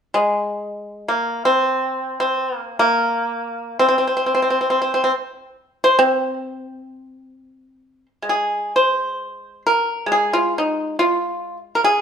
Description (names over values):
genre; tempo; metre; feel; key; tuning
chinese traditional, Chinese solo plucked strings; free time; none; none; C jue mode; A4 = 439 Hz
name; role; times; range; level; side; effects
pipa; solo; 0.1-12.0 s; Ab3 to C5; -17 LUFS; equal; none
room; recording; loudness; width
wet stone room reverb, RT60 1.1 s; band playing live in one room; -17 LUFS; side -7 dB against mid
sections
0.0-8.3 A section; 8.3-12.0 B section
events
none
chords
none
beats
free time